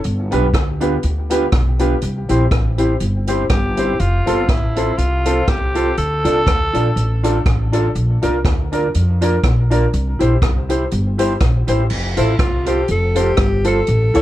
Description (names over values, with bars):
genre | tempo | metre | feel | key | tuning
ska | 122 BPM | 4/4 | swing 55% on 8ths | F major | A4 = 442 Hz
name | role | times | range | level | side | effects
upright bass | bass | 0.0-14.2 s | F1 to F2 | -18 LUFS | equal | none
swinging big-band drum kit | drums | 0.0-14.2 s | crash cymbal, hi-hat, kick drum, rim click | -19 LUFS | equal | none
mellow electric guitar | accompaniment | 0.3-14.2 s | D4 to D5 | -21 LUFS | right 3 dB | plate reverb
dark upright piano | stabs | 0.3-14.2 s | B3 to C#5 | -23 LUFS | left 4 dB | plate reverb, tape echo
raspy tenor saxophone | melody | 3.5-7.4 s | E4 to A4 | -22 LUFS | equal | plate reverb, tape echo
breathy alto saxophone | melody | 12.2-14.2 s | E4 to A4 | -20 LUFS | left 1 dB | plate reverb
room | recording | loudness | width
light reverb | cassette tape | -14 LUFS | side -14 dB against mid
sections
0.0-11.9 A section; 11.9-14.2 B section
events
alto saxophone solo 11.9-14.2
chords
0.0 G7; 2.0 C; 4.0 F; 6.0 Dm; 8.0 Bb; 9.9 C; 11.9 F